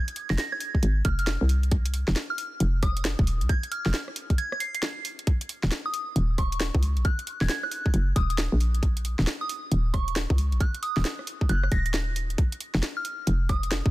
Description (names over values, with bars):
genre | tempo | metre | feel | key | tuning
UK garage, two-step garage | 135 BPM | 4/4 | swing 63% on 16ths | Eb dorian | A4 = 440 Hz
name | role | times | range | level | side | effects
soft synth bell | melody | 0.0-13.7 s | Db6 to C7 | -33 LUFS | right 1 dB | chorus, phaser, dub echo
garage drum kit | drums | 0.1-13.8 s | hi-hat, rim click, snare drum | -32 LUFS | equal | overdrive
hollow knocking FM bass | bass | 0.3-13.9 s | Eb1 to Db2 | -24 LUFS | equal | none
electronic kick drum | drums | 0.7-13.9 s | none | -24 LUFS | equal | overdrive
room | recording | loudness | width
little or no reverb | dense, heavily limited modern master | -24 LUFS | side -18 dB against mid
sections
0.0-13.9 A section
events
break 4.4-5.3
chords
0.0 F5; 5.3 Eb5; 12.4 N.C.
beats
0.38 0.83 1.27 | 1.72 2.16 2.60 3.05 | 3.49 3.94 4.38 4.83 | 5.27 5.72 6.16 6.61 | 7.05 7.49 7.94 8.38 | 8.83 9.27 9.72 10.16 | 10.61 11.05 11.49 11.94 | 12.38 12.83 13.27 13.72